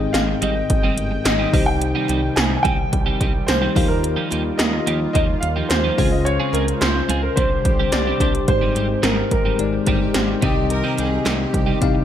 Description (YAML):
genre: 1980s-style pop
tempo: 108 BPM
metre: 4/4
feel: straight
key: C minor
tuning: A4 = 440 Hz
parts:
  - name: warm grand piano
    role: melody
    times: 0.0-10.4 s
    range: Bb4 to Ab5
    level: -24 LUFS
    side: equal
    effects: lush chorus, digital delay
  - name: bell-like tine electric piano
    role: accompaniment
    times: 0.0-12.0 s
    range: Ab2 to F5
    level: -24 LUFS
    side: left 5 dB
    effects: lush chorus
  - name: brassy analog pad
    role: sustained chords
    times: 0.0-12.0 s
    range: Db3 to G5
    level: -28 LUFS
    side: right 2 dB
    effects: chorus, tremolo
  - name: clean electric guitar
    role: riff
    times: 0.0-12.0 s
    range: F3 to Ab4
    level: -27 LUFS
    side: right 6 dB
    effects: analog chorus
  - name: smooth synth bass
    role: bass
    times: 0.0-12.0 s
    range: G1 to Eb2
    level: -25 LUFS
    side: equal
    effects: none
  - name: 80s electronic pad drums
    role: drums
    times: 0.1-11.9 s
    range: hi-hat, kick drum, snare drum, tambourine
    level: -20 LUFS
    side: right 1 dB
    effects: gated reverb
  - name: group handclap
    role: percussion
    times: 0.1-11.4 s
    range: none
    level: barely audible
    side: none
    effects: none
  - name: clear studio violin section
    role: second line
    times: 9.9-12.0 s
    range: G4 to Bb4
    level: -30 LUFS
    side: right 2 dB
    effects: digital delay
room: moderate plate reverb, RT60 2.2 s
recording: bright 1980s-style digital production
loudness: -17 LUFS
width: side -10 dB against mid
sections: 0.0-8.5 A section; 8.5-12.0 B section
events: none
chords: 0.0 Abmaj7; 1.5 Cm; 3.8 Ebadd9; 6.0 Dbmaj7; 7.4 Csus2; 8.5 Abmaj7; 10.4 Cm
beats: 0.15 0.70 1.26 | 1.82 2.37 2.93 3.48 | 4.04 4.59 5.15 5.71 | 6.26 6.82 7.37 7.93 | 8.48 9.04 9.59 10.15 | 10.71 11.26 11.82